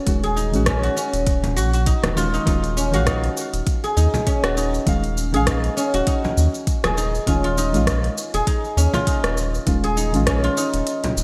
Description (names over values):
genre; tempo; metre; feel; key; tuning
organic downtempo; 100 BPM; 4/4; swing 57% on 16ths; Eb minor; A4 = 445 Hz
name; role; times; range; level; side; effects
deep mellow chord stab; accompaniment; 0.0-11.2 s; Eb3 to F5; -28 LUFS; equal; chorus, sidechain pumping, delay
guzheng; arpeggios; 0.0-11.2 s; Db4 to Ab4; -26 LUFS; equal; delay
warm sub bass; bass; 0.1-11.2 s; Eb1 to Eb2; -24 LUFS; equal; tube saturation, sidechain pumping
electronic kick drum; drums; 0.1-10.4 s; none; -24 LUFS; equal; none
organic electronic drum kit; drums; 0.1-11.2 s; hi-hat, rim click, shaker; -29 LUFS; equal; gated reverb
frame drum; percussion; 1.4-11.1 s; none; -30 LUFS; equal; none
room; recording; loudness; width
moderate lush hall reverb, RT60 1.9 s; bright 1980s-style digital production; -20 LUFS; mono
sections
0.0-11.2 A section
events
break 10.9-11.2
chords
0.0 Ebm11